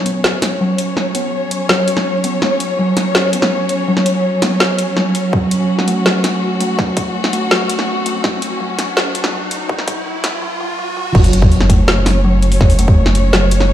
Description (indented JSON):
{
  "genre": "half-time drum and bass",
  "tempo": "165 BPM",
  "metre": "4/4",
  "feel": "half-time",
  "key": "F# minor",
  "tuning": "A4 = 440 Hz",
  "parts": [
    { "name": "warm symphonic string section", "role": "sustained chords", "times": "0.0-13.7 s", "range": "F#3 to C#5", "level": "-20 LUFS", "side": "left 1 dB", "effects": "sidechain pumping" },
    { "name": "kalimba", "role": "arpeggios", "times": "0.0-13.7 s", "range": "F#3 to B3", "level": "-19 LUFS", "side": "equal", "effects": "low-pass filter, dub echo" },
    { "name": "drum and bass drum kit", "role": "drums", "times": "0.1-13.7 s", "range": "crash cymbal, hi-hat, snare drum", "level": "-18 LUFS", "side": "equal", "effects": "none" },
    { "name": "electronic kick drum", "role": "drums", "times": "5.3-13.0 s", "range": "none", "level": "-13 LUFS", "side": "equal", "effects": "none" },
    { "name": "riser and impact", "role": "sound effects", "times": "7.4-12.6 s", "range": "none", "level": "-23 LUFS", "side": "right 1 dB", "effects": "none" },
    { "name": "saturated sub bass", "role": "bass", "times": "11.2-13.7 s", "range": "F#1", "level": "-14 LUFS", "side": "equal", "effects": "none" }
  ],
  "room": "light reverb, digital ambience",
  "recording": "played on a big sound system in a bare room, stone room reverb, high-pass filter",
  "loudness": "-13 LUFS",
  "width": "side -11 dB against mid",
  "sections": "0.0-11.2 A section; 11.2-13.7 B section",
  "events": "build-up 0.0-11.2; filter sweep on kalimba 0.0-11.2; riser 7.4-11.2; drop 11.2-13.7; impact 11.2-12.6",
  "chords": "0.0 F#5",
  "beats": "0.24 0.61 | 0.97 1.33 1.70 2.06 | 2.42 2.79 3.15 3.52 | 3.88 4.24 4.61 4.97 | 5.33 5.70 6.06 6.42 | 6.79 7.15 7.51 7.88 | 8.24 8.61 8.97 9.33 | 9.70 10.06 10.42 10.79 | 11.15 11.52 11.88 12.24 | 12.61 12.97 13.33 13.70"
}